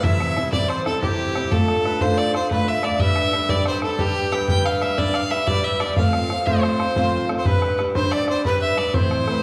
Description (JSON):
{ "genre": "celtic folk, Celtic slip jig", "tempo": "121 BPM (dotted quarters)", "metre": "9/8", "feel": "straight", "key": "unclear", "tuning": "A4 = 440 Hz", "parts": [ { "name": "bright fiddle", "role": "melody", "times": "0.0-9.4 s", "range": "G4 to G5", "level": "-26 LUFS", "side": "equal", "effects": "none" }, { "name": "accordion", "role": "second line", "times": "0.0-9.4 s", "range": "G4 to G5", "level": "-30 LUFS", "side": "equal", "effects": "none" }, { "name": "picked steel-string acoustic guitar", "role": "accompaniment", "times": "0.0-9.4 s", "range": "A2 to C5", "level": "-26 LUFS", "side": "equal", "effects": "none" }, { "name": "bodhran", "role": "percussion", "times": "0.0-9.4 s", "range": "none", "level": "-26 LUFS", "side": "equal", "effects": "none" } ], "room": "wet recital hall reverb, RT60 1.4 s", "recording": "heard from further back in the room", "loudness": "-21 LUFS", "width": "mono", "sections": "0.0-9.4 A section", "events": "none", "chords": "0.0 C; 1.5 Dm; 3.0 G; 6.0 F; 7.5 G" }